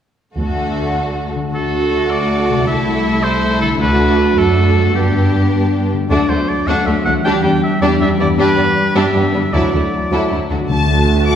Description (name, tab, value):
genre	cinematic, heroic adventure film score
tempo	104 BPM (dotted quarters)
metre	6/8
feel	straight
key	D mixolydian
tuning	A4 = 435 Hz
part	rich symphonic violin section	melody	0.4-11.4 s	A3 to D6	-25 LUFS	left 4 dB	none
part	warm symphonic violin section	second line	0.4-11.4 s	G3 to F#5	-22 LUFS	left 1 dB	none
part	dark symphonic viola section	accompaniment	0.4-11.4 s	F#3 to F#4	-22 LUFS	right 1 dB	none
part	rich symphonic cello section	bass	0.4-11.4 s	C2 to G2	-18 LUFS	right 1 dB	none
part	warm symphonic double bass section	bass	0.4-0.7, 10.7-11.4 s	D2	-20 LUFS	right 2 dB	none
part	concert harp	arpeggios	1.4-11.4 s	G2 to A4	-22 LUFS	left 5 dB	none
part	bright oboe	second line	1.5-10.5 s	G4 to G5	-20 LUFS	equal	none
part	dark French horn section	sustained chords	1.5-11.4 s	F#3 to F#4	-20 LUFS	right 2 dB	none
part	timpani	percussion	10.7-11.2 s	D3	-19 LUFS	left 2 dB	none
room	wet scoring stage reverb, RT60 1.8 s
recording	heard from further back in the room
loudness	-13 LUFS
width	side -9 dB against mid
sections	0.4-1.5 A section; 1.5-10.7 B section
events	none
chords	0.4 D; 2.7 Am/C; 3.8 D; 4.9 G; 6.1 D; 7.3 Em7; 8.4 G; 9.5 Dadd9; 10.7 D